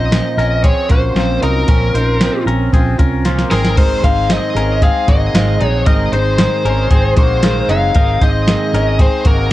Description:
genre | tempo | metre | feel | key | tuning
jangly indie pop | 115 BPM | 4/4 | straight | unclear | A4 = 440 Hz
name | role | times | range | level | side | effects
biting lead guitar | melody | 0.0-9.5 s | Bb4 to F5 | -18 LUFS | left 2 dB | overdrive, plate reverb
picked steel-string acoustic guitar | accompaniment | 0.0-9.5 s | Ab2 to Ab4 | -21 LUFS | right 4 dB | plate reverb
direct-recorded clean electric guitar | arpeggios | 0.0-9.5 s | Gb3 to C5 | -22 LUFS | left 3 dB | phaser, plate reverb
vintage muted fingered electric bass | bass | 0.0-9.5 s | Gb1 to C2 | -17 LUFS | equal | none
soft vintage rhythm box | drums | 0.1-9.4 s | crash cymbal, hi-hat, kick drum, snare drum | -14 LUFS | equal | overdrive
overdriven combo organ | accompaniment | 3.8-9.5 s | Eb4 to Eb5 | -25 LUFS | left 3 dB | spring reverb, plate reverb
room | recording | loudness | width
light reverb | cassette tape | -11 LUFS | side -15 dB against mid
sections
0.0-9.5 A section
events
drum fill 3.3-3.8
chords
0.0 Bbmadd9; 3.5 Ab

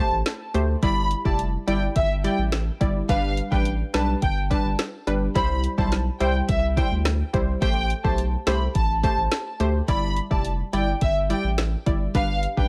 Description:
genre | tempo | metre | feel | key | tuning
dancehall | 106 BPM | 4/4 | straight | A minor | A4 = 441 Hz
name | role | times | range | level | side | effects
warm studio violin section | melody | 0.0-12.7 s | E5 to B5 | -30 LUFS | equal | delay
glassy wavetable pluck | accompaniment | 0.0-12.7 s | G3 to D5 | -29 LUFS | equal | chorus
saturated sub bass | bass | 0.1-12.7 s | F1 to D2 | -28 LUFS | equal | none
afro-pop drum kit | drums | 0.3-12.7 s | hi-hat, kick drum, rim click, snare drum | -28 LUFS | equal | vintage 12-bit sampler grit
room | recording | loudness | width
digital ambience | none | -23 LUFS | mono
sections
0.0-12.7 A section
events
none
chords
0.0 Am7; 0.8 Em7; 3.1 G; 5.4 C; 7.6 Am7; 9.9 Em7; 12.1 G

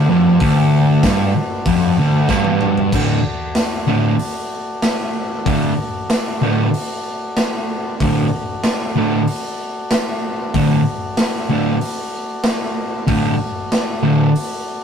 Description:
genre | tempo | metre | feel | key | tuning
garage rock duo or trio | 95 BPM | 4/4 | straight | D major | A4 = 441 Hz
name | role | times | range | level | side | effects
combo organ | sustained chords | 0.0-14.8 s | F#4 to D5 | -26 LUFS | left 2 dB | spring reverb
fuzz guitar | riff | 0.0-14.3 s | D2 to D3 | -14 LUFS | equal | distortion
raw garage drum kit | drums | 0.4-14.5 s | crash cymbal, hi-hat, kick drum, snare drum, toms | -21 LUFS | equal | none
tambourine | percussion | 1.0-13.9 s | none | -35 LUFS | right 5 dB | none
room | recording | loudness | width
moderate booth ambience, RT60 0.2 s | rough rehearsal-room recording, tube saturation | -15 LUFS | side -7 dB against mid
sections
0.0-2.9 A section; 2.9-14.8 B section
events
drum fill 2.3-2.9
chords
0.0 D

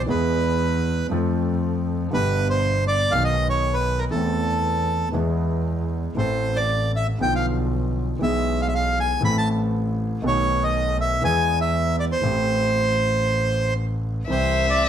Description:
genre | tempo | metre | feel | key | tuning
tango | 118 BPM | 4/4 | rubato | A minor | A4 = 440 Hz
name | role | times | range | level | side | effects
bandoneon | melody | 0.0-14.9 s | A4 to B5 | -23 LUFS | right 1 dB | slapback echo
warm concert grand piano | accompaniment | 0.0-14.9 s | G1 to A4 | -24 LUFS | equal | none
clear double bass | bass | 0.0-14.9 s | G1 to F2 | -25 LUFS | equal | none
warm violin | second line | 14.3-14.9 s | E5 | -21 LUFS | left 3 dB | none
room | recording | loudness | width
moderate studio reverb, RT60 0.7 s | none | -20 LUFS | side -9 dB against mid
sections
0.0-14.9 A section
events
none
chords
0.1 E; 1.1 F; 2.1 G; 3.1 B; 4.1 Am/E; 5.1 E; 6.2 Am; 7.2 Bdim; 8.2 E/B; 9.2 Am; 10.2 B7; 11.2 E; 12.2 Am7; 14.3 C

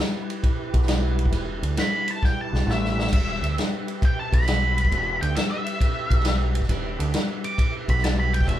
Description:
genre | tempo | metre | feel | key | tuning
blues rock power trio and southern rock | 134 BPM | 4/4 | swing 68% on 8ths | E minor | A4 = 440 Hz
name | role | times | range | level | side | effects
percussive tonewheel organ | sustained chords | 0.0-8.6 s | E4 to E5 | -34 LUFS | right 4 dB | chorus vibrato, slow rotary speaker
vintage drum kit | drums | 0.0-8.6 s | crash cymbal, kick drum, ride cymbal, snare drum | -24 LUFS | equal | none
growling fingered electric bass | bass | 0.7-8.6 s | E1 to D2 | -24 LUFS | equal | overdrive
octave-fuzz lead guitar | melody | 1.8-8.6 s | E5 to D6 | -27 LUFS | equal | distortion
room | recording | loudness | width
moderate studio ambience, RT60 0.5 s | band playing live in one room | -21 LUFS | side -12 dB against mid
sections
0.0-8.6 A section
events
lead electric guitar solo 0.0-8.6; drum fill 2.2-3.1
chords
0.0 Em

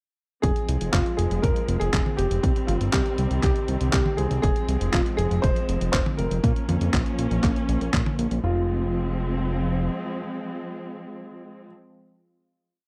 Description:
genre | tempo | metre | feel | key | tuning
italo disco | 120 BPM | 4/4 | straight | F minor | A4 = 440 Hz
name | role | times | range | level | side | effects
dark grand piano | melody | 0.4-11.7 s | F4 to C5 | -32 LUFS | equal | tape echo
warm studio string section | sustained chords | 0.4-11.7 s | Eb3 to Db4 | -33 LUFS | equal | none
fat analog bass | bass | 0.4-9.9 s | F1 to Bb2 | -27 LUFS | equal | none
dusty soul sampler-style drum kit | drums | 0.4-8.4 s | handclaps, hi-hat, toms | -32 LUFS | equal | studio reverb
electronic kick drum | drums | 0.4-8.0 s | none | -27 LUFS | equal | studio reverb
room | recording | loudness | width
little or no reverb | dry, close 1970s-style studio recording | -24 LUFS | mono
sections
0.4-8.4 verse; 8.4-12.4 final chord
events
none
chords
0.4 Fm; 2.4 Cm; 4.4 Fm; 6.4 Bbm; 8.4 Fm

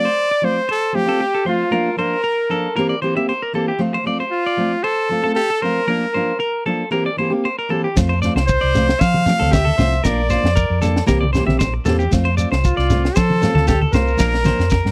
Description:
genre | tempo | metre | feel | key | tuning
highlife guitar band | 116 BPM | 4/4 | straight | F major | A4 = 441 Hz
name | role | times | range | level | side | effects
bright trumpet | melody | 0.0-14.9 s | F4 to F5 | -22 LUFS | equal | none
fingerpicked steel-string acoustic guitar | accompaniment | 0.0-14.6 s | E3 to G4 | -24 LUFS | equal | none
clean electric guitar | arpeggios | 0.0-14.9 s | G4 to E5 | -26 LUFS | equal | tape echo
hollow-body short-scale fingered electric bass | bass | 8.0-14.9 s | Bb1 to F3 | -21 LUFS | equal | none
tight funk drum kit | drums | 8.0-14.9 s | kick drum, snare drum | -23 LUFS | equal | none
shekere | percussion | 8.0-14.8 s | none | -28 LUFS | equal | none
congas | percussion | 8.8-14.6 s | none | -25 LUFS | equal | none
room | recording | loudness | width
little or no reverb | dry, close 1970s-style studio recording | -18 LUFS | mono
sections
0.0-14.9 A section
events
drum fill 14.2-14.9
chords
0.0 F; 1.7 Bb; 2.8 C7; 3.8 F; 5.9 Bb; 6.9 C7; 8.0 F; 10.0 Bb; 11.1 C7; 12.1 F; 14.2 Bb

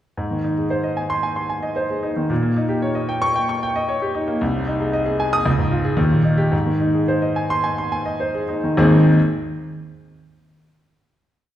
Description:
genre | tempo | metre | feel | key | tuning
classical, virtuoso piano study | 105-115 BPM | 4/4 | rubato | Ab major | A4 = 440 Hz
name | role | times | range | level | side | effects
warm grand piano | solo | 0.2-9.2 s | Ab1 to Eb6 | -18 LUFS | equal | none
room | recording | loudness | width
wet recital hall reverb, RT60 1.6 s | heard from further back in the room | -17 LUFS | side -12 dB against mid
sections
0.2-8.8 A section; 8.8-11.0 final chord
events
none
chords
0.2 Ab; 2.3 Eb7/Bb; 4.4 Ab/C; 5.5 Db; 6.0 Eb; 6.5 Ab

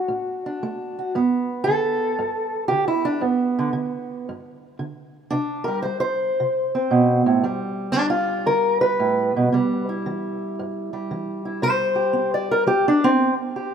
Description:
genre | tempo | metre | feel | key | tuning
acoustic country blues, solo or duo | 114 BPM | 4/4 | swing 68% on 8ths | G major | A4 = 439 Hz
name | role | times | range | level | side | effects
fingerpicked acoustic archtop guitar | solo | 0.0-13.7 s | G2 to D5 | -20 LUFS | right 1 dB | none
room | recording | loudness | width
moderate lush hall reverb, RT60 2.5 s | rough home demo mix | -19 LUFS | side -7 dB against mid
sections
0.0-1.1 A section; 1.1-13.7 B section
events
steel-string acoustic guitar solo 1.1-13.7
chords
0.0 D; 1.1 G; 5.3 C5; 7.4 G; 9.5 C

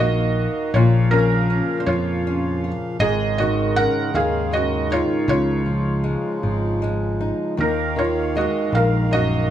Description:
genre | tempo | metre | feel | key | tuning
acoustic folk-pop ballad | 53 BPM (dotted quarters) | 6/8 | straight | Eb minor | A4 = 440 Hz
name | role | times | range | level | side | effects
felt-muted upright piano | melody | 0.0-9.5 s | Db4 to Gb5 | -22 LUFS | right 1 dB | none
nylon-string guitar | accompaniment | 0.0-9.5 s | Eb2 to F4 | -23 LUFS | left 2 dB | none
hand-pumped harmonium | sustained chords | 0.0-9.5 s | Db3 to F5 | -30 LUFS | right 2 dB | none
fingered electric bass | bass | 0.0-9.5 s | Ab1 to F2 | -22 LUFS | right 1 dB | none
room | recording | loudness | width
light reverb | small room ambience | -18 LUFS | side -11 dB against mid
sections
0.0-9.5 A section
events
none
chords
0.0 Ebsus2; 0.7 Bbm; 3.0 Absus4; 5.3 Dbadd9; 7.6 Ebmadd9

